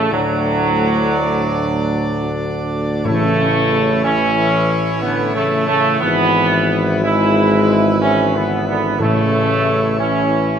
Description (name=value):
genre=classical, ceremonial fanfare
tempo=61 BPM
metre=3/4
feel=straight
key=A major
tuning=A4 = 441 Hz
part: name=clear trumpet section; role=melody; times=0.0-10.6 s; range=D4 to D5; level=-26 LUFS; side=left 1 dB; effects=none
part: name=chamber organ, principal chorus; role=sustained chords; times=0.0-10.6 s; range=G#2 to D5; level=-23 LUFS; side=left 3 dB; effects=none
part: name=clear trombone section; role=sustained chords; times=0.0-10.6 s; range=F#3 to E4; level=-17 LUFS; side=right 3 dB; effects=none
part: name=dark French horn section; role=sustained chords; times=0.0-10.6 s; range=A2 to G#3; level=-22 LUFS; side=left 5 dB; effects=none
part: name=warm tuba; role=bass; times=0.0-10.6 s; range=G#1 to D2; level=-20 LUFS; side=right 2 dB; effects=none
part: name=timpani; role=percussion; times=3.1-4.5, 9.0-10.4 s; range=A2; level=-24 LUFS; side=left 2 dB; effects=none
room=moderate scoring stage reverb, RT60 1.6 s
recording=none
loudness=-14 LUFS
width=side -8 dB against mid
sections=0.0-10.6 A section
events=none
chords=0.1 D; 3.1 A; 6.0 E/G#; 9.0 A